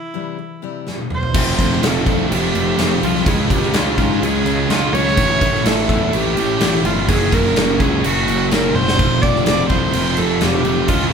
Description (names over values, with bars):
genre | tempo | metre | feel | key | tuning
quiet-loud alternative rock | 126 BPM | 4/4 | straight | unclear | A4 = 440 Hz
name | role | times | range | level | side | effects
rich viola | melody | 0.0-11.1 s | E4 to D5 | -21 LUFS | right 1 dB | none
picked steel-string acoustic guitar | arpeggios | 0.0-1.3 s | C3 to G3 | -29 LUFS | left 10 dB | none
big rock drum kit | drums | 0.9-11.0 s | crash cymbal, kick drum, snare drum, toms | -18 LUFS | equal | none
sludgy distorted guitar | riff | 1.3-11.1 s | A2 to Gb4 | -24 LUFS | left 8 dB | overdrive
sludgy distorted guitar | riff | 1.3-11.1 s | F2 to Db4 | -23 LUFS | equal | overdrive
thick fuzz guitar | riff | 1.3-11.1 s | A2 to Gb4 | -24 LUFS | right 8 dB | distortion
fuzz picked electric bass | bass | 1.3-11.1 s | F1 to Ab2 | -22 LUFS | equal | overdrive
room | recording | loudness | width
moderate large studio reverb, RT60 1.4 s | band playing live in one room | -14 LUFS | side -6 dB against mid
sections
0.0-1.3 A section; 1.3-11.1 B section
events
break 0.0-1.3; drum fill 0.9-1.3, 8.7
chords
0.0 C; 1.3 F; 3.3 Db; 5.2 A; 7.1 Gb; 9.0 F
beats
0.38 0.86 | 1.34 1.83 2.31 2.79 | 3.26 3.74 4.22 4.70 | 5.17 5.65 6.13 6.61 | 7.08 7.56 8.04 8.51 | 8.99 9.46 9.94 10.41 | 10.89